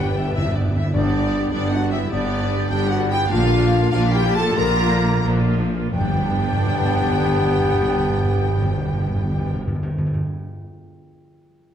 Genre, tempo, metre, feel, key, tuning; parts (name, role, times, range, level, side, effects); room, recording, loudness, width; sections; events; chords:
cinematic, heroic adventure film score; 84-104 BPM; 4/4; straight; G major; A4 = 441 Hz
warm symphonic violin section; melody; 0.0-9.5 s; D5 to Bb5; -31 LUFS; left 2 dB
bright clarinet; second line; 0.0-9.5 s; B3 to E5; -30 LUFS; left 2 dB
rich studio violin section; second line; 0.0-9.5 s; D5 to Bb5; -32 LUFS; left 2 dB
small flute group; second line; 0.0-9.5 s; D5 to Bb5; -29 LUFS; right 1 dB
clear symphonic viola section; accompaniment; 0.0-9.5 s; F3 to B4; -30 LUFS; equal
bright trombone section; sustained chords; 0.0-9.5 s; D3 to B3; -30 LUFS; right 4 dB
mellow French horn section; sustained chords; 0.0-9.5 s; D4 to Bb4; -24 LUFS; left 3 dB
concert harp; arpeggios; 0.0-10.4 s; G2 to G5; -29 LUFS; left 7 dB
rich symphonic cello section; bass; 0.0-9.5 s; G2 to Bb2; -26 LUFS; right 2 dB
rich symphonic double bass section; bass; 0.0-9.5 s; G1 to Bb1; -25 LUFS; right 3 dB
timpani; percussion; 0.0-1.8, 5.9-10.2 s; G2; -23 LUFS; equal
wet recital hall reverb, RT60 1.5 s; dark, warm production; -17 LUFS; side -9 dB against mid
0.9-5.9 A section; 5.9-8.8 B section
timpani fill 0.0-0.9; slowing down 0.0-5.9
0.0 G; 3.3 Bb; 5.9 G